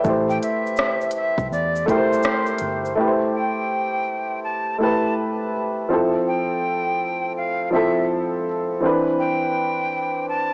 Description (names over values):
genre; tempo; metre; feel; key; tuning
lo-fi hip hop; 82 BPM; 4/4; swing 65% on 16ths; A minor; A4 = 440 Hz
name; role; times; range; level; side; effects
dark upright piano; accompaniment; 0.0-10.5 s; E3 to E5; -24 LUFS; equal; cassette tape
vintage muted fingered electric bass; bass; 0.0-2.9 s; G1 to E2; -32 LUFS; equal; none
organic electronic drum kit; drums; 0.0-3.0 s; hi-hat, kick drum, rim click, shaker; -28 LUFS; equal; overdrive, cassette tape
breathy bright jazz flute; melody; 0.3-10.5 s; C5 to A5; -27 LUFS; equal; cassette tape
room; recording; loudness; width
moderate spring reverb, RT60 2.4 s; home recording on cassette, small speaker sound; -22 LUFS; mono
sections
0.0-3.0 A section; 3.0-10.5 B section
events
none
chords
0.0 Am7; 5.9 Fmaj7; 8.8 Cmaj7/E